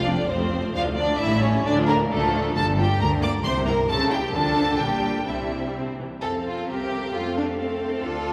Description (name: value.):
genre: quick classical-period movement for string orchestra.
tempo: 133 BPM.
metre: 2/4.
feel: rubato.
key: F major.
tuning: A4 = 440 Hz.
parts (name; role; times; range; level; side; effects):
rich studio violin section; melody; 0.0-8.3 s; A4 to D6; -30 LUFS; equal; none.
rich studio violin section; second line; 0.0-8.3 s; A3 to D5; -30 LUFS; equal; none.
warm studio viola section; accompaniment; 0.0-8.3 s; D3 to Bb4; -31 LUFS; equal; none.
rich studio double bass section; bass; 0.0-8.3 s; F1 to F2; -32 LUFS; equal; none.
warm studio cello section; bass; 0.0-8.3 s; D2 to F4; -30 LUFS; equal; none.
room: wet church reverb, RT60 3.5 s.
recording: recorded in a church or concert hall.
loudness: -23 LUFS.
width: mono.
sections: 0.0-6.2 A section; 6.2-8.3 A section.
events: none.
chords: 0.0 F; 0.8 Dm; 1.2 A7; 1.7 Dm; 2.6 Gm7; 3.4 C7; 3.9 A7/C#; 4.3 Dm; 4.8 Gm/Bb; 5.3 C; 6.2 F; 6.7 C7; 7.1 F.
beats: 0.29 | 0.75 1.21 | 1.66 2.11 | 2.56 3.00 | 3.44 3.88 | 4.33 4.79 | 5.26 5.74 | 6.22 6.68 | 7.14 7.59 | 8.03.